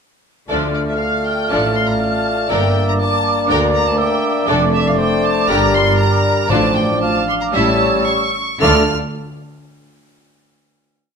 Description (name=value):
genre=quick classical-period movement for symphony orchestra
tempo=109-122 BPM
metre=4/4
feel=straight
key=D minor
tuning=A4 = 440 Hz
part: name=dark symphonic violin section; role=second line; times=0.5-8.9 s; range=E4 to E5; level=-22 LUFS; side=left 2 dB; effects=none
part: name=mellow small flute group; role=second line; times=0.5-8.9 s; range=A5 to F6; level=-23 LUFS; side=right 5 dB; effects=none
part: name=warm clarinet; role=second line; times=0.5-8.8 s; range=A4 to D5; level=-24 LUFS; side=left 4 dB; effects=none
part: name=rich chamber viola section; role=accompaniment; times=0.5-8.9 s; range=D3 to D4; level=-24 LUFS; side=right 1 dB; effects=none
part: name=warm bassoon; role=accompaniment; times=0.5-8.8 s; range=F3 to Bb3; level=-22 LUFS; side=right 1 dB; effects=none
part: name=warm French horn section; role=sustained chords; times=0.5-8.8 s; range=F3 to F4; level=-24 LUFS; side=left 5 dB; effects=none
part: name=rich chamber cello section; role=bass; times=0.5-8.9 s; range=D2 to D3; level=-23 LUFS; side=right 1 dB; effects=none
part: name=warm chamber double bass section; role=bass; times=0.5-8.9 s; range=F1 to D2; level=-23 LUFS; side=right 2 dB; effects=none
part: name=rich chamber violin section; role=melody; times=0.8-8.9 s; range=D5 to F6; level=-21 LUFS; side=left 2 dB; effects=none
part: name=mellow cor anglais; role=second line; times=1.5-8.8 s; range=Bb4 to F5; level=-23 LUFS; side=right 3 dB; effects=none
part: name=timpani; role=percussion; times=6.5-8.9 s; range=A2 to D3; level=-25 LUFS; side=left 2 dB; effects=none
room=moderate recital hall reverb, RT60 1.3 s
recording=none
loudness=-13 LUFS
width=side -6 dB against mid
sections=0.5-8.6 theme; 8.6-10.8 final chord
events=slowing down 3.5-8.6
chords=0.5 Dm; 2.5 Gm; 4.5 Dm/F; 5.5 Gm; 6.5 Dm/A; 7.5 A7; 8.6 Dm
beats=| 0.49 1.00 1.51 2.01 | 2.50 3.00 3.50 3.99 | 4.49 4.99 5.49 5.99 | 6.50 7.02 7.54 8.07 | 8.62